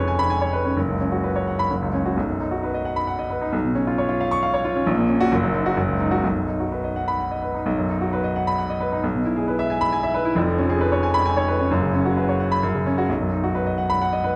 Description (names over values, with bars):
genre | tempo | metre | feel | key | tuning
classical, virtuoso piano study | 131 BPM | 3/4 | rubato | B major | A4 = 440 Hz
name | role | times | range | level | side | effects
clear baby grand piano | solo | 0.0-14.4 s | E#1 to C#6 | -22 LUFS | equal | none
room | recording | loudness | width
moderate recital hall reverb, RT60 1.3 s | dark, warm production | -22 LUFS | mono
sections
0.0-7.7 A section; 7.7-14.4 A section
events
none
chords
0.0 C#7/E#; 0.8 F#sus4; 1.7 F#5; 2.2 B; 3.5 C#7/B; 4.9 F#/A#; 5.3 D#m/F#; 5.8 F#5; 6.2 B; 9.0 E/B; 10.4 C#7/E#; 11.7 F#sus4; 12.6 F#5; 13.1 B